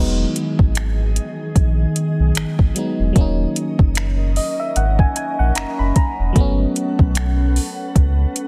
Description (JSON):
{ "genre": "contemporary R&B", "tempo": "75 BPM", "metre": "4/4", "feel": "swing 58% on 16ths", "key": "unclear", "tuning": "A4 = 444 Hz", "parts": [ { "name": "FM electric piano", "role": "accompaniment", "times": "0.0-8.5 s", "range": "F#3 to B5", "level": "-26 LUFS", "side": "equal", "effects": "chorus" }, { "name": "glassy FM pad", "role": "sustained chords", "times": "0.2-8.5 s", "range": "D#3 to F#5", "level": "-28 LUFS", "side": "equal", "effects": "ensemble chorus, built-in reverb, sidechain pumping" }, { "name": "sub bass with octave", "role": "bass", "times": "0.0-8.3 s", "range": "D#1 to C#2", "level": "-21 LUFS", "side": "equal", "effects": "none" }, { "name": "smooth R&B drum kit", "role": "drums", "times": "0.4-8.5 s", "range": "finger snaps, hi-hat, kick drum", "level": "-19 LUFS", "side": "equal", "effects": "overdrive, soft clipping on snare" } ], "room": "little or no reverb", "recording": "dense, heavily limited modern master", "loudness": "-18 LUFS", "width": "mono", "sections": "0.0-8.5 A section", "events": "FM electric piano fill 4.0-6.4", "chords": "0.0 Emaj7; 3.2 D#m7; 6.4 Gmaj9#11" }